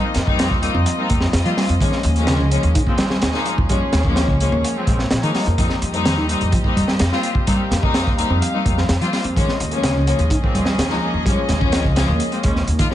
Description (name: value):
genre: breakbeat, breaks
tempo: 127 BPM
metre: 4/4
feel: straight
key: unclear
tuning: A4 = 438 Hz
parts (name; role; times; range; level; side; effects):
- warm studio string section; sustained chords; 0.0-12.9 s; F3 to F5; -28 LUFS; equal; sidechain pumping
- picked electric bass; riff; 0.0-12.9 s; Db3 to Eb4; -25 LUFS; equal; tube saturation, ping-pong delay
- crunchy breakbeat drum kit; drums; 0.1-12.9 s; hi-hat, kick drum, snare drum; -20 LUFS; equal; none
- upright bass; bass; 0.2-12.8 s; Bb1 to F2; -21 LUFS; equal; tube saturation
- rich chamber string section; stabs; 0.3-12.9 s; F3 to F4; -22 LUFS; left 3 dB; ping-pong delay
room: small room ambience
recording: nothing above 10.5 kHz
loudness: -16 LUFS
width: side -12 dB against mid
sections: 0.0-12.9 A section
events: none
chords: 0.0 F9sus4; 1.8 Eb9sus4; 5.6 F9sus4; 9.4 Eb9sus4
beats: 0.39 0.86 1.33 | 1.81 2.28 2.75 3.22 | 3.70 4.17 4.64 5.11 | 5.59 6.06 6.53 7.00 | 7.48 7.95 8.42 8.89 | 9.37 9.84 10.31 10.78 | 11.26 11.73 12.20 12.67